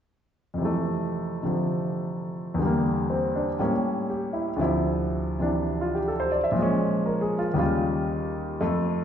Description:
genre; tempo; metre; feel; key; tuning
solo jazz; 120 BPM; 4/4; swing 67% on 8ths, rubato; F major; A4 = 440 Hz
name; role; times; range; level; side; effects
clear grand piano; solo; 0.5-9.0 s; D2 to E5; -24 LUFS; equal; none
room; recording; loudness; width
wet recital hall reverb, RT60 1.6 s; recorded in a church or concert hall, nothing above 7.8 kHz; -24 LUFS; side -8 dB against mid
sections
0.6-8.6 A section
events
none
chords
0.6 Fmaj7; 2.6 Em7b5; 3.6 A7b9; 4.6 Dm9; 6.6 Bbm7; 7.6 Eb9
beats
| 0.59 1.10 1.60 2.10 | 2.60 3.10 3.60 4.09 | 4.58 5.07 5.56 6.06 | 6.55 7.05 7.56 8.08 | 8.61

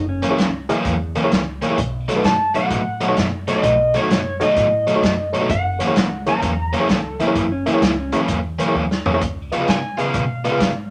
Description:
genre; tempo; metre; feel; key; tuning
electric blues shuffle; 129 BPM; 4/4; swing 66% on 8ths; F# mixolydian; A4 = 436 Hz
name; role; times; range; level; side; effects
clean lap steel guitar; second line; 0.0-0.5, 6.9-8.2 s; C#4 to A4; -26 LUFS; equal; none
upright bass; bass; 0.0-10.9 s; F#1 to B2; -30 LUFS; equal; none
overdriven reed electric piano; accompaniment; 0.2-10.6 s; D#4 to E#5; -25 LUFS; equal; fast tremolo
crunchy overdriven guitar; riff; 0.2-10.7 s; F#2 to E#4; -24 LUFS; equal; none
vintage drum kit; drums; 0.2-10.7 s; hi-hat, kick drum, snare drum, toms; -25 LUFS; equal; none
electric guitar through a small old amp; melody; 2.3-6.9, 9.7-10.9 s; C#5 to A#5; -23 LUFS; equal; none
room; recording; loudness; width
moderate studio ambience, RT60 0.5 s; none; -19 LUFS; mono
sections
0.0-10.9 A section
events
drum fill 8.7-9.2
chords
0.0 F#7; 1.8 B7; 5.5 F#7; 9.2 C#7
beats
0.39 0.85 1.32 | 1.78 2.25 2.71 3.17 | 3.64 4.10 4.57 5.03 | 5.49 5.96 6.42 6.89 | 7.35 7.82 8.28 8.74 | 9.21 9.67 10.13 10.60

